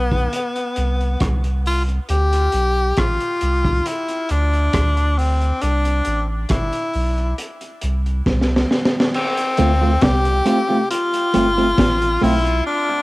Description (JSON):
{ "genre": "dub reggae", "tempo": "68 BPM", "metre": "4/4", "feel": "straight", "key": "D dorian", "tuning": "A4 = 439 Hz", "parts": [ { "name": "bright tenor saxophone", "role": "melody", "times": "0.0-13.0 s", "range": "B3 to G4", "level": "-20 LUFS", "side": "left 1 dB", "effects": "cassette tape, dub echo" }, { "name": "soft dub sub bass", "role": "bass", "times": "0.0-12.6 s", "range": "G1 to D2", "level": "-19 LUFS", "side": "equal", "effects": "none" }, { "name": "crunchy breakbeat drum kit", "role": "drums", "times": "0.1-12.7 s", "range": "crash cymbal, hi-hat, kick drum, rim click, snare drum", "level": "-21 LUFS", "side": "equal", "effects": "cassette tape" }, { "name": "clean electric guitar", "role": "accompaniment", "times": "9.6-12.3 s", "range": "A3 to F4", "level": "-21 LUFS", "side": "right 2 dB", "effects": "cassette tape, dub echo" }, { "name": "semi-hollow electric guitar", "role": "riff", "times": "9.6-12.5 s", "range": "G2 to D3", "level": "-28 LUFS", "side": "left 4 dB", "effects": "none" } ], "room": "light reverb", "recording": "home recording on cassette", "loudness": "-16 LUFS", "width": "side -20 dB against mid", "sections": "0.0-9.1 A section; 9.1-13.0 B section", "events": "break 0.0-9.1, 12.7-13.0; drum fill 8.3-9.1", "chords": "0.0 C5; 2.1 Dm; 5.6 Cmaj7; 9.1 Dm7" }